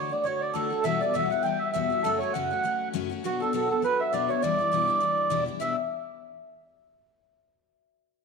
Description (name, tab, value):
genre	celtic folk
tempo	202 BPM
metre	4/4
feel	swing 56% on 8ths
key	E dorian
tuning	A4 = 440 Hz
part	mellow accordion	melody	0.0-5.8 s	F#4 to G5	-26 LUFS	right 4 dB	none
part	concert harp	second line	0.0-5.9 s	F#4 to G5	-33 LUFS	left 10 dB	none
part	picked steel-string acoustic guitar	accompaniment	0.0-5.8 s	E2 to F#4	-31 LUFS	left 10 dB	none
room	moderate echo chamber reverb, RT60 1.7 s, small room ambience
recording	1960s-style stereo, lossy compression artefacts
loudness	-24 LUFS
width	side -4 dB against mid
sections	0.0-5.6 A section; 5.6-6.8 B section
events	none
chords	0.0 D; 0.9 Emadd9; 2.0 F#m; 3.2 Bm; 4.4 Em7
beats	0.25 0.55 | 0.85 1.15 1.45 1.75 | 2.04 2.34 2.64 2.94 | 3.23 3.53 3.83 4.13 | 4.42 4.72 5.02 5.31 | 5.61